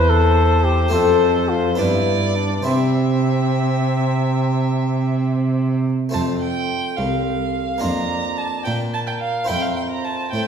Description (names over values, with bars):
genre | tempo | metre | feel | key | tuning
classical, baroque-style sonata movement with continuo | 71 BPM (dotted quarters) | 12/8 | straight | C major, F major from 6.1 s | A4 = 440 Hz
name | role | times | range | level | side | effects
dark trumpet | melody | 0.0-10.5 s | C4 to D5 | -23 LUFS | left 4 dB | none
rich violin | second line | 0.0-10.5 s | C5 to Bb5 | -25 LUFS | right 5 dB | none
harpsichord | accompaniment | 0.0-10.5 s | C2 to Bb4 | -24 LUFS | left 3 dB | none
rich cello | bass | 0.0-10.5 s | C2 to C3 | -20 LUFS | right 2 dB | none
room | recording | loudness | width
wet scoring stage reverb, RT60 1.7 s | heard from further back in the room | -17 LUFS | side -7 dB against mid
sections
0.0-6.1 A section; 6.1-10.5 A section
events
none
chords
0.0 C/E; 0.9 F; 1.8 G; 2.7 C; 6.1 F; 7.8 Bb/F; 9.5 C7/F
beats
0.10 0.94 1.79 | 2.66 3.53 4.41 5.27 | 6.14 6.98 7.82 8.67 | 9.51 10.34